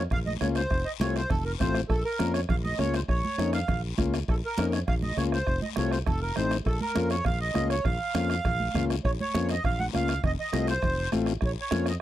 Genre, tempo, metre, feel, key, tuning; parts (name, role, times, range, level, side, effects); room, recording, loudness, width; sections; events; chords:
latin, cumbia; 202 BPM; 4/4; straight; Bb harmonic minor; A4 = 440 Hz
accordion; melody; 0.0-12.0 s; A4 to Gb5; -31 LUFS; right 2 dB; light tremolo tuning
overdriven combo organ; accompaniment; 0.0-11.9 s; A3 to F4; -29 LUFS; left 5 dB
fingered electric bass; bass; 0.0-12.0 s; F1 to F2; -30 LUFS; equal
bombo; percussion; 0.1-12.0 s; -31 LUFS; right 1 dB
congas; percussion; 0.1-11.9 s; -34 LUFS; right 3 dB
guiro; percussion; 0.1-12.0 s; -42 LUFS; left 17 dB
little or no reverb; dry, close 1970s-style studio recording; -25 LUFS; side -13 dB against mid
0.0-12.0 A section
0.0 Bbm; 0.7 F; 1.9 Bbm; 5.5 F7; 6.7 Bbm; 10.2 F7; 11.4 Bbm